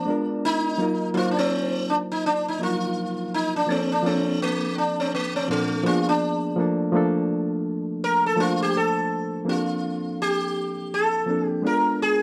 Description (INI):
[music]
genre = R&B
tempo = 83 BPM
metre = 4/4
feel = swing 60% on 16ths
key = Bb major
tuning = A4 = 440 Hz
[part]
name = sitar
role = melody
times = 0.0-12.2 s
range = A3 to Bb4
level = -26 LUFS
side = equal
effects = none
[part]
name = barky reed electric piano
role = accompaniment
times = 0.0-12.2 s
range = Bb2 to C5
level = -27 LUFS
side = equal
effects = none
[sound]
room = moderate studio reverb, RT60 0.5 s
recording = none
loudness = -24 LUFS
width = mono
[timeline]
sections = 0.0-9.5 A section; 9.5-12.2 B section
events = sitar solo 0.0-9.5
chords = 0.1 Bb7b9; 0.8 Ebmadd9; 3.7 Bbmaj9; 5.9 Bb7b9; 6.6 Bbmaj9; 11.6 Bb7b9